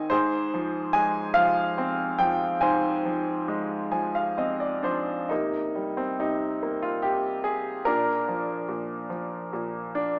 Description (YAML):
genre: classical, lyrical solo piano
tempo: 64-74 BPM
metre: 3/4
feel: rubato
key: F dorian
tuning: A4 = 440 Hz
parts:
  - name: bright baby grand piano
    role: solo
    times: 0.0-10.2 s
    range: Ab2 to Ab5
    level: -27 LUFS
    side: equal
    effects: none
room: moderate concert hall reverb, RT60 2.1 s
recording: small speaker sound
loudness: -27 LUFS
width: mono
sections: 0.0-5.3 A section; 5.3-10.2 B section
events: grand piano fill 3.5-5.3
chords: 0.1 Fm/Ab; 5.3 C5; 7.9 Bb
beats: | 0.11 0.93 1.76 | 2.61 3.48 4.38 | 5.31 6.20 7.04 | 7.87 8.69 9.53